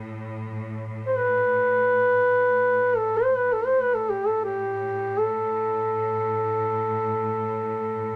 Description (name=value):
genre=caucasian folk, Caucasian lament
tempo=free time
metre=none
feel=none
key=A minor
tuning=A4 = 440 Hz
part: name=clear symphonic string section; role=drone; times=0.0-8.2 s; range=A2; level=-37 LUFS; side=equal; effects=none
part: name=dark duduk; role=melody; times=1.1-8.2 s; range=G4 to C5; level=-24 LUFS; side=equal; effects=none
room=wet studio reverb, RT60 0.5 s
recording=none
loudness=-24 LUFS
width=mono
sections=0.0-8.2 A section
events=none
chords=none